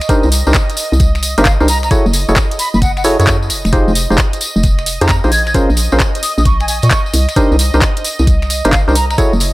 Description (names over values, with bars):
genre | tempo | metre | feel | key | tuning
UK garage, two-step garage | 132 BPM | 4/4 | swing 66% on 16ths | unclear | A4 = 440 Hz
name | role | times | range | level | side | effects
warm analog pad | sustained chords | 0.0-9.5 s | Eb5 | -25 LUFS | right 4 dB | chorus, tremolo, vintage 12-bit sampler grit, sidechain pumping
garage drum kit | drums | 0.0-9.5 s | finger snaps, handclaps, hi-hat | -19 LUFS | equal | none
tambourine | percussion | 0.0-9.5 s | none | -23 LUFS | left 1 dB | none
percussive organ stab | stabs | 0.1-9.3 s | Db4 to Db5 | -16 LUFS | equal | chorus, dub echo
electronic kick drum | drums | 0.1-9.3 s | none | -14 LUFS | equal | none
hollow knocking FM bass | bass | 0.2-9.5 s | F1 to Bb2 | -14 LUFS | equal | none
concert flute | melody | 1.4-9.2 s | F5 to Ab6 | -20 LUFS | equal | dub echo
room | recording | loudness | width
digital ambience | none | -10 LUFS | side -19 dB against mid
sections
0.0-9.5 A section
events
none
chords
0.0 Cm9; 1.9 Gbm9; 3.7 Fm9; 5.3 Bbm9; 7.1 Cm9